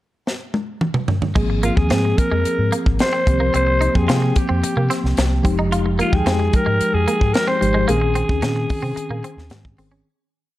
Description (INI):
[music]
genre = polished 1980s jazz-funk pop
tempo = 110 BPM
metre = 4/4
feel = straight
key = Ab major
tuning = A4 = 440 Hz
[part]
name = tight funk drum kit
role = drums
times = 0.3-9.9 s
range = crash cymbal, hi-hat, kick drum, snare drum, toms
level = -20 LUFS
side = equal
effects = none
[part]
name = mellow tine electric piano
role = accompaniment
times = 1.4-10.1 s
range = Eb3 to G5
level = -22 LUFS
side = left 1 dB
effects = medium stereo tremolo, lush chorus
[part]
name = clean electric guitar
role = riff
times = 1.4-10.0 s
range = Ab3 to F4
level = -27 LUFS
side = right 2 dB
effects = analog chorus
[part]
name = fingered electric bass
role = bass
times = 1.4-10.0 s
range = F1 to C3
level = -20 LUFS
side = equal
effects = none
[part]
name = raspy alto saxophone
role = melody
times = 1.6-9.8 s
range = F4 to C5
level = -22 LUFS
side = left 1 dB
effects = none
[sound]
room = light reverb, studio reverb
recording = dark, warm production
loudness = -16 LUFS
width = side -15 dB against mid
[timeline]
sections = 0.0-1.4 pickup bar; 1.4-10.1 verse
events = drum fill 0.3-1.4; fade-out 7.9-10.1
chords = 0.0 N.C.; 1.4 Ab69; 3.3 C7sus4; 5.4 Fm9; 7.9 Bbm11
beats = 0.27 0.82 | 1.36 1.91 2.45 3.00 | 3.54 4.09 4.63 5.17 | 5.72 6.26 6.80 7.35 | 7.89 8.43 8.98 9.52